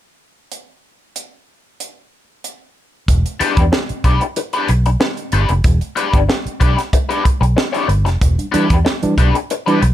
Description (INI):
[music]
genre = funk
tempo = 94 BPM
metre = 4/4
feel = straight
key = E minor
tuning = A4 = 441 Hz
[part]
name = crisp fusion drum kit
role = drums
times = 0.5-9.9 s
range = hi-hat, kick drum, snare drum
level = -17 LUFS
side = right 1 dB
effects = none
[part]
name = vintage muted fingered electric bass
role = bass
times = 3.1-9.9 s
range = E1 to E2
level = -15 LUFS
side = equal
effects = none
[part]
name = raw garage guitar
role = accompaniment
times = 3.4-9.9 s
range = B3 to C#5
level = -19 LUFS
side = left 4 dB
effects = wah, overdrive
[part]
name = overdriven tine electric piano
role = stabs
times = 8.4-9.8 s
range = E3 to D4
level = -17 LUFS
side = right 2 dB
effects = none
[sound]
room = little or no reverb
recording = none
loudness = -13 LUFS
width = side -12 dB against mid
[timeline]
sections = 0.5-3.1 A section; 3.1-9.9 B section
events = none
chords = 0.5 N.C.; 3.1 Em7